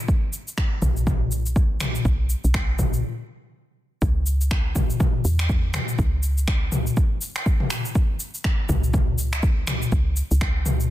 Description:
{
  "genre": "afro house",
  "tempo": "122 BPM",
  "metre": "4/4",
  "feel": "swing 59% on 16ths",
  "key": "C# minor",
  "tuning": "A4 = 440 Hz",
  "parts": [
    { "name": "deep house drum kit", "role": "drums", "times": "0.1-10.9 s", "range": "finger snaps, shaker, toms", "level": "-26 LUFS", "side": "left 2 dB", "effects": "overdrive" },
    { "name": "electronic kick drum", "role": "drums", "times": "0.1-10.5 s", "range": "none", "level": "-22 LUFS", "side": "equal", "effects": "overdrive" },
    { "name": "woody FM bass", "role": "bass", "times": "0.8-10.9 s", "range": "B1 to E2", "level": "-23 LUFS", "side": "equal", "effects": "sidechain pumping" }
  ],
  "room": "little or no reverb",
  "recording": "dense, heavily limited modern master",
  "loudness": "-20 LUFS",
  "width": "side -14 dB against mid",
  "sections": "0.0-4.0 A section; 4.0-10.9 A section",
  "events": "stop 3.0-4.0",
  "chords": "none",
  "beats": "| 0.08 0.58 1.07 1.56 | 2.05 2.54 3.04 3.53 | 4.02 4.51 5.00 5.49 | 5.99 6.48 6.97 7.46 | 7.95 8.44 8.94 9.43 | 9.92 10.41"
}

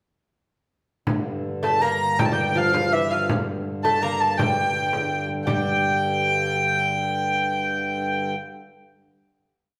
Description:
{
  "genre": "medieval dance",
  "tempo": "165 BPM",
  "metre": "3/4",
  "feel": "uneven beats",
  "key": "G minor",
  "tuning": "A4 = 441 Hz",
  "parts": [
    { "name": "pedal harmonium", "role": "drone", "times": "1.1-8.3 s", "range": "G2 to D3", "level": "-31 LUFS", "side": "equal", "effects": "none" },
    { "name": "frame drum", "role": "percussion", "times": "1.1-5.6 s", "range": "none", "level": "-30 LUFS", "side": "equal", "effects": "none" },
    { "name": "rich hurdy-gurdy", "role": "melody", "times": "1.6-8.3 s", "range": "E5 to Bb5", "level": "-24 LUFS", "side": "equal", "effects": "none" },
    { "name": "lute", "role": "second line", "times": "1.6-9.0 s", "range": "E3 to Bb3", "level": "-30 LUFS", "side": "equal", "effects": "none" }
  ],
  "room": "wet large studio reverb, RT60 1.4 s",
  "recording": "band playing live in one room",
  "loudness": "-23 LUFS",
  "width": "mono",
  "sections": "1.1-5.5 A section; 5.5-7.6 final chord",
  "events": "speeding up 1.1-7.6",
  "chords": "none",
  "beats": "| 1.07 1.45 1.82 | 2.19 2.56 2.93 | 3.30 3.66 4.03 | 4.39 4.75 5.11 | 5.46 5.82 6.17 | 6.52 6.87 7.21"
}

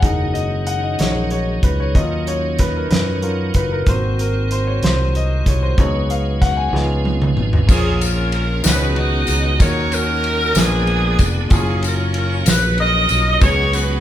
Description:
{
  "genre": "slow gospel",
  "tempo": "63 BPM (dotted quarters)",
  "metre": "6/8",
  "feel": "straight",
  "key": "F# major",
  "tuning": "A4 = 440 Hz",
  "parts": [
    { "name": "clear concert grand piano", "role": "accompaniment", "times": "0.0-14.0 s", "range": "A#2 to G#5", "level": "-23 LUFS", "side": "left 2 dB", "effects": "none" },
    { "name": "tonewheel organ", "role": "sustained chords", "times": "0.0-14.0 s", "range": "D3 to G#4", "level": "-27 LUFS", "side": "right 2 dB", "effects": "slow rotary speaker, chorus vibrato" },
    { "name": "fingered electric bass", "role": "bass", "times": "0.0-14.0 s", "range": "E#1 to F#2", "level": "-20 LUFS", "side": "equal", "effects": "none" },
    { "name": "warm soul drum kit", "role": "drums", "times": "0.0-13.9 s", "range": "crash cymbal, hi-hat, kick drum, ride cymbal, snare drum, toms", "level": "-18 LUFS", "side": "equal", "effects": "none" },
    { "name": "bright saxophone section", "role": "melody", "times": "7.7-14.0 s", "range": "B3 to D#5", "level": "-19 LUFS", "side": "equal", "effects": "slapback echo" },
    { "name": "tambourine", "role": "percussion", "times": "7.7-14.0 s", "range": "none", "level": "-27 LUFS", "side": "left 6 dB", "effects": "none" }
  ],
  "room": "moderate large studio reverb, RT60 1.1 s",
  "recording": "band playing live in one room",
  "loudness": "-15 LUFS",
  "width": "side -12 dB against mid",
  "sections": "0.0-7.7 A section; 7.7-14.0 B section",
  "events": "grand piano solo 0.0-7.7; drum fill 6.7-7.7",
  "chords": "0.0 F#6; 1.9 D#m7; 3.9 G#7; 5.8 C#7sus4; 6.7 C#7; 7.7 A#m7; 8.6 C#9sus4; 9.6 D#m7; 10.6 A#7b9; 11.5 F#maj7; 13.4 C#7sus4",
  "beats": "| 0.03 0.99 | 1.95 2.91 | 3.87 4.82 | 5.78 6.74 | 7.69 8.65 | 9.60 10.56 | 11.51 12.46 | 13.42"
}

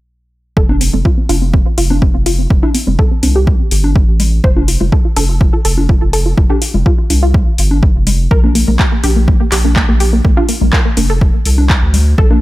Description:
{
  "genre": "progressive house",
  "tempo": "124 BPM",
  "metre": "4/4",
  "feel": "straight",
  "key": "F major",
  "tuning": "A4 = 440 Hz",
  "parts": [
    { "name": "wide unison pluck", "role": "arpeggios", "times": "0.6-12.4 s", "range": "Bb3 to C5", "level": "-18 LUFS", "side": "right 1 dB", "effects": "sidechain pumping, digital delay" },
    { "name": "saturated sub bass", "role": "bass", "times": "0.6-12.4 s", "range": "F1 to D2", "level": "-13 LUFS", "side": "equal", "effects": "sidechain pumping" },
    { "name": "electronic kick drum", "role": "drums", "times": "0.6-12.3 s", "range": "none", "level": "-12 LUFS", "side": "equal", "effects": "overdrive, small room ambience" },
    { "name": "congas", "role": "percussion", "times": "0.7-12.4 s", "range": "none", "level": "-20 LUFS", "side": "left 2 dB", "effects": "sidechain pumping on perc, small room ambience" },
    { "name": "deep house drum kit", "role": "drums", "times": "0.8-12.0 s", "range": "handclaps, hi-hat", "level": "-19 LUFS", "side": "left 1 dB", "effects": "overdrive, sidechain pumping on hats, small room ambience" }
  ],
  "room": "little or no reverb",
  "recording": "none",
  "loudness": "-9 LUFS",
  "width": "side -17 dB against mid",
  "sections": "0.6-12.4 A section",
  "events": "filter sweep on synth pluck 0.6-12.4",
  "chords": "0.6 F5; 8.3 Bbmaj7(no3)",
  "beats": "| 0.57 1.05 1.54 2.02 | 2.50 2.99 3.47 3.96 | 4.44 4.92 5.41 5.89 | 6.38 6.86 7.34 7.83 | 8.31 8.79 9.28 9.76 | 10.25 10.73 11.21 11.70 | 12.18"
}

